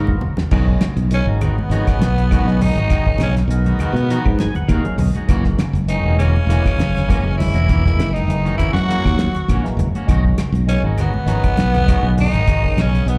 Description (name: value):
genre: afrobeat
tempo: 100 BPM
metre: 4/4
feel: swing 54% on 16ths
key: unclear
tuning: A4 = 440 Hz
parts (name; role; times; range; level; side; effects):
- percussive tonewheel organ; accompaniment; 0.0-13.2 s; D#3 to G#5; -32 LUFS; equal; slow rotary speaker, slapback echo
- clean electric guitar; stabs; 0.0-12.8 s; D#3 to Gb4; -32 LUFS; equal; slapback echo
- fingered electric bass; bass; 0.0-13.2 s; Fb1 to B2; -20 LUFS; equal; none
- mellow electric guitar; arpeggios; 0.1-12.9 s; Db3 to Gb3; -31 LUFS; equal; none
- cloth-damped thuddy drum kit; drums; 0.1-13.2 s; crash cymbal, hi-hat, kick drum, snare drum, toms; -22 LUFS; equal; none
- congas; percussion; 0.1-12.9 s; none; -28 LUFS; equal; none
- claves; percussion; 0.5-12.9 s; none; -42 LUFS; equal; none
- breathy tenor saxophone; melody; 1.1-13.2 s; B3 to Gb4; -26 LUFS; equal; none
- brilliant trombone section; second line; 1.1-13.2 s; B2 to Gb3; -35 LUFS; equal; none
- growling trumpet; second line; 1.1-13.2 s; B3 to Gb4; -36 LUFS; equal; none
room: small room ambience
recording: live gig heard through the venue's PA, club reverb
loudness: -17 LUFS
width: mono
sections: 0.5-13.2 A section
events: drum fill 0.0-0.5; tonewheel organ fill 4.1-5.3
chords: 0.0 Abm7; 0.5 B6; 5.3 Gb7; 10.1 B6